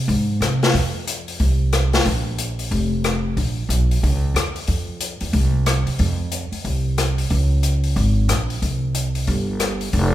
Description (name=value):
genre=jazz piano trio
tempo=183 BPM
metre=4/4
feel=swing 62% on 8ths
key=F minor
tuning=A4 = 440 Hz
part: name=upright bass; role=bass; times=0.0-10.1 s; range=F1 to C3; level=-19 LUFS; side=right 1 dB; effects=none
part: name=open jazz drum kit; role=drums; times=0.1-10.0 s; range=hi-hat, kick drum, rim click, snare drum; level=-24 LUFS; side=left 2 dB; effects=none
room=moderate recital hall reverb, RT60 1.3 s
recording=recorded in a church or concert hall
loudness=-18 LUFS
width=side -13 dB against mid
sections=0.0-10.1 A section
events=none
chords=none